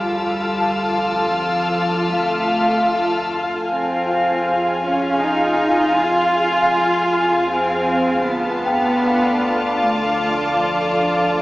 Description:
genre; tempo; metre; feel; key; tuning
cinematic; 78 BPM; 3/4; straight; unclear; A4 = 440 Hz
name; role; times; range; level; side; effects
warm chamber violin section; melody; 0.0-11.4 s; Ab5 to A5; -26 LUFS; equal; none
warm chamber violin section; second line; 0.0-11.4 s; F4 to F5; -21 LUFS; equal; none
wind-like tuned noise texture; sustained chords; 0.0-11.4 s; D4 to F5; -22 LUFS; equal; built-in reverb
dark chamber cello section; bass; 0.0-11.4 s; F3 to F4; -22 LUFS; equal; none
warm studio double bass section; bass; 0.0-11.4 s; D2 to F2; -35 LUFS; right 1 dB; none
deep rumbling drone; drone; 0.0-11.4 s; F2; -36 LUFS; equal; built-in reverb
large celesta; texture; 0.0-11.4 s; F4 to A5; -27 LUFS; left 1 dB; none
warm chamber violin section; texture; 0.0-3.3 s; D6 to F6; -31 LUFS; left 2 dB; none
room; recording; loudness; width
wet concert hall reverb, RT60 2.3 s; recorded in a church or concert hall, small speaker sound; -16 LUFS; side -18 dB against mid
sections
0.0-11.4 A section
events
none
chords
0.0 Dm; 3.7 Fm; 8.3 Dm

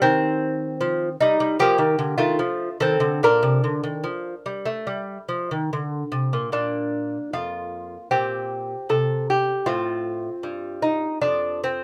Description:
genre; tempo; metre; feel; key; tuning
classical, baroque-style dance for lute; 71-78 BPM; 4/4; rubato; Bb major; A4 = 440 Hz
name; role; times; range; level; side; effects
lute; solo; 0.0-11.8 s; F2 to Bb4; -23 LUFS; equal; none
room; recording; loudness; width
light reverb; none; -23 LUFS; mono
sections
0.0-6.5 A section; 6.5-11.8 B section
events
none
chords
0.0 Cm/Eb; 1.6 Bb; 2.4 F7; 3.2 Bb; 8.1 C5/Bb; 9.7 F

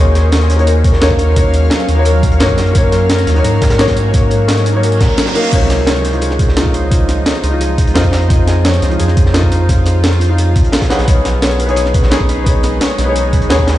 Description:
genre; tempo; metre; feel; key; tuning
liquid drum and bass; 173 BPM; 4/4; straight; unclear; A4 = 438 Hz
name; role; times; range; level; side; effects
clear concert grand piano; accompaniment; 0.0-13.8 s; C3 to F#5; -18 LUFS; left 2 dB; dub echo
shimmering ambient pad; sustained chords; 0.0-13.8 s; F3 to F5; -22 LUFS; right 1 dB; chorus, built-in reverb, phaser
concert harp; arpeggios; 0.0-13.8 s; Ab4 to Db6; -21 LUFS; right 1 dB; dub echo
warm sub bass; bass; 0.0-13.8 s; B1 to Ab2; -13 LUFS; equal; none
breakbeat sampler-style drum kit; drums; 0.2-13.7 s; crash cymbal, hi-hat, snare drum; -19 LUFS; equal; none
crunchy breakbeat drum kit; drums; 0.2-13.8 s; hi-hat, snare drum; -24 LUFS; equal; high-pass filter on hats, high-pass filter on snare, high-pass filter on room
electronic kick drum; drums; 0.8-13.7 s; none; -13 LUFS; equal; none
reverse cymbal; sound effects; 4.9-5.5 s; none; -23 LUFS; right 4 dB; none
room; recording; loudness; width
light reverb; played on a big sound system in a bare room, stone room reverb, nothing above 10.7 kHz; -10 LUFS; side -14 dB against mid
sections
0.0-13.8 A section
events
reverse cymbal 4.9-5.5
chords
0.0 Ebm7; 5.5 Dbmaj9; 10.9 B69

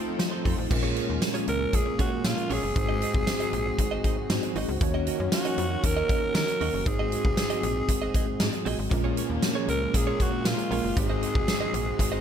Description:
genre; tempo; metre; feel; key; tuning
1980s-style pop; 117 BPM; 4/4; straight; unclear; A4 = 440 Hz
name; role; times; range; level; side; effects
cranked stack guitar; accompaniment; 0.0-1.2, 8.9-12.2 s; Ab2 to F4; -38 LUFS; left 1 dB; overdrive, ensemble chorus
tine electric piano; accompaniment; 0.0-12.2 s; Ab2 to Db5; -32 LUFS; left 1 dB; medium stereo tremolo
brassy analog pad; sustained chords; 0.0-12.2 s; Eb3 to A4; -35 LUFS; right 1 dB; chorus
direct-recorded clean electric guitar; riff; 0.0-12.2 s; Bb3 to Eb5; -36 LUFS; right 5 dB; wide subtle chorus
slap-like FM bass; bass; 0.2-12.2 s; Gb1 to F3; -31 LUFS; equal; none
huge arena drum kit; drums; 0.2-12.1 s; crash cymbal, hi-hat, kick drum, snare drum, tambourine; -28 LUFS; equal; gated reverb
raspy alto saxophone; melody; 1.5-12.2 s; F4 to Bb4; -30 LUFS; equal; none
room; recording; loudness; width
light reverb, small room ambience; none; -24 LUFS; side -8 dB against mid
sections
0.7-12.2 A section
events
none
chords
0.0 F7; 0.7 Bbm7; 2.8 Ab7; 4.8 Ebm7; 6.9 Ab7; 8.9 Bbm7; 11.0 Ab7

